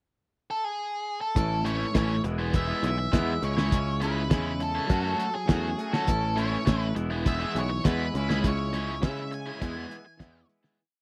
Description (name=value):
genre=indie rock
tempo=102 BPM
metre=4/4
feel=straight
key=unclear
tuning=A4 = 440 Hz
part: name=octave-fuzz lead guitar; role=melody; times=0.5-10.5 s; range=G#4 to G#5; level=-34 LUFS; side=equal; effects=distortion
part: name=twangy electric guitar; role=riff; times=1.4-10.8 s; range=A2 to F#4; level=-35 LUFS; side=equal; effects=harmonic tremolo
part: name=picked electric bass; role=bass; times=1.4-10.4 s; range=E1 to C#3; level=-32 LUFS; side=equal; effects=none
part: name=cloth-damped thuddy drum kit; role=drums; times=1.4-10.8 s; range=hi-hat, kick drum, snare drum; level=-28 LUFS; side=equal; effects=none
part: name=overdriven electric guitar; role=riff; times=1.6-10.8 s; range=C#3 to F#4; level=-37 LUFS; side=equal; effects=subtle chorus
room=little or no reverb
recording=dry, close 1970s-style studio recording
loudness=-28 LUFS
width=mono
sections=0.0-1.4 pickup bar; 1.4-10.8 verse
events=fade-out 8.4-10.8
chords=0.0 N.C.; 1.4 A; 2.2 E; 3.4 C#m; 4.9 F#m; 6.1 A; 7.0 E; 8.1 C#m; 9.6 E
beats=0.18 0.77 | 1.36 1.95 2.54 3.13 | 3.72 4.31 4.90 5.49 | 6.08 6.67 7.26 7.85 | 8.44 9.03 9.61 10.20